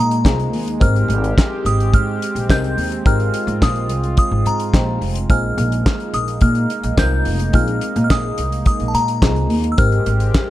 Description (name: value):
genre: early-eighties boogie funk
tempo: 107 BPM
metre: 4/4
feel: straight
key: unclear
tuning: A4 = 441 Hz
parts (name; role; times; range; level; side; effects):
- delicate synth tine bell; melody; 0.0-10.5 s; A5 to G6; -23 LUFS; left 1 dB; chorus, slapback echo
- warm analog pad; sustained chords; 0.0-10.5 s; Ab3 to G4; -26 LUFS; right 3 dB; chorus
- upright bass; bass; 0.0-10.3 s; F1 to Bb2; -19 LUFS; equal; none
- damped 70s drum kit; drums; 0.1-10.5 s; handclaps, hi-hat, kick drum, snare drum; -17 LUFS; equal; none
- FM electric piano; accompaniment; 0.2-10.5 s; C4 to C5; -26 LUFS; left 5 dB; chorus, phaser
room: small room ambience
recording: dark, warm production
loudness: -15 LUFS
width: side -14 dB against mid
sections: 0.0-10.5 A section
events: none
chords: 0.0 Bb7sus4; 0.8 Abmaj9; 5.3 Bb7sus4; 9.8 Abmaj9